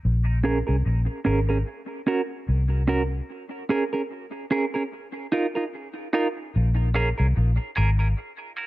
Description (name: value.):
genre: dub reggae.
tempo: 74 BPM.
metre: 4/4.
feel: swing 57% on 16ths.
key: Bb minor.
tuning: A4 = 438 Hz.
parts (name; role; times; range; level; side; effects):
vintage muted fingered electric bass; bass; 0.1-8.1 s; Ab1 to C2; -21 LUFS; equal; none.
clean electric guitar; accompaniment; 0.4-8.7 s; Db4 to Bb4; -26 LUFS; right 3 dB; tremolo, high-pass filter, low-pass filter, dub echo.
room: light reverb.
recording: none.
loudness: -22 LUFS.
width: side -17 dB against mid.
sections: 0.0-6.5 A section; 6.5-8.7 B section.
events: break 3.3-6.5; filter sweep on clean electric guitar 3.3-8.7.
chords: 0.0 Bbm7; 1.7 Bbmadd9; 3.3 Bbm7; 4.9 F7sus4; 6.5 Bbm7; 8.2 Bbm.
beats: | 0.04 0.85 1.66 2.48 | 3.29 4.10 4.92 5.73 | 6.54 7.35 8.17.